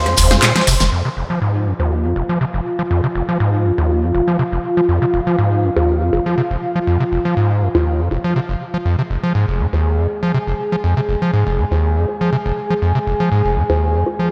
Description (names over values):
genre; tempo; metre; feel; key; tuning
acid house; 121 BPM; 4/4; straight; F minor; A4 = 440 Hz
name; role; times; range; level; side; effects
dark analog pad; sustained chords; 0.0-14.3 s; F4 to C6; -23 LUFS; equal; chorus
overdriven acid bass; riff; 0.0-14.3 s; F1 to F3; -19 LUFS; equal; distortion, cassette tape, diffuse ambient delay
electro analog drum machine; drums; 0.1-1.0 s; crash cymbal, handclaps, hi-hat, ride cymbal, rim click, snare drum; -20 LUFS; equal; overdrive, low-pass filter on hats, low-pass filter on cymbals, low-pass filter on snare
warm sub bass; bass; 0.2-0.9 s; F1; -19 LUFS; equal; none
dusty soul sampler-style drum kit; drums; 0.2-0.9 s; hi-hat, snare drum; -28 LUFS; equal; none
shekere; percussion; 0.2-0.9 s; none; -23 LUFS; equal; none
filtered dub chord stab; stabs; 0.3-14.2 s; F4 to C5; -26 LUFS; equal; phaser, analog chorus, diffuse ambient delay
room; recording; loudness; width
moderate lush hall reverb, RT60 1.8 s; dreamy mix soaked in reverb; -17 LUFS; mono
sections
0.9-14.3 A section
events
none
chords
0.0 F5; 0.9 Fm